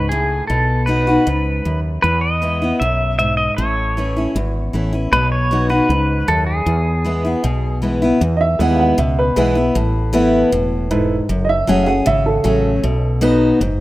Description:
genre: honky-tonk and classic country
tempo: 156 BPM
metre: 4/4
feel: straight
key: E major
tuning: A4 = 440 Hz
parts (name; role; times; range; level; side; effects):
- pedal steel guitar; melody; 0.0-7.8 s; G#4 to E5; -19 LUFS; equal; none
- picked steel-string acoustic guitar; accompaniment; 0.0-13.8 s; E2 to G#4; -18 LUFS; left 1 dB; none
- woody fretless electric bass; bass; 0.0-13.8 s; E1 to E2; -19 LUFS; equal; analog chorus
- dark upright piano; second line; 8.4-13.4 s; A4 to F#5; -19 LUFS; right 3 dB; none
- warm concert grand piano; accompaniment; 8.6-13.5 s; D#4 to B4; -24 LUFS; right 4 dB; none
room: light reverb, studio ambience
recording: rough home demo mix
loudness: -14 LUFS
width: side -17 dB against mid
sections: 0.0-8.2 A section; 8.2-13.8 B section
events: upright piano solo 8.2-13.8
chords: 0.5 B; 2.0 E; 3.6 A; 5.1 B; 6.7 E; 9.8 Asus2; 11.3 F#madd9; 12.8 B

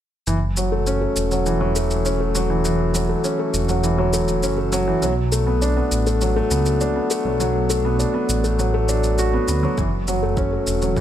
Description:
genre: piano and strings electronica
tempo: 101 BPM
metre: 4/4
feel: straight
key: F# minor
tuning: A4 = 439 Hz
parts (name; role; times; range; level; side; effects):
- felt-muted upright piano; riff; 0.3-11.0 s; E3 to F#4; -20 LUFS; equal; tape echo
- dark detuned saw bass; bass; 0.3-11.0 s; E1 to D2; -22 LUFS; equal; sidechain pumping
- shaker; drums; 0.3-11.0 s; none; -30 LUFS; equal; small room reverb
- electronic kick drum; drums; 9.8-11.0 s; none; -24 LUFS; equal; small room reverb
room: light reverb, digital ambience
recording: none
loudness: -18 LUFS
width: side -10 dB against mid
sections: 0.3-11.0 A section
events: none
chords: 0.3 F#m7; 5.0 Bm7; 9.8 F#m7

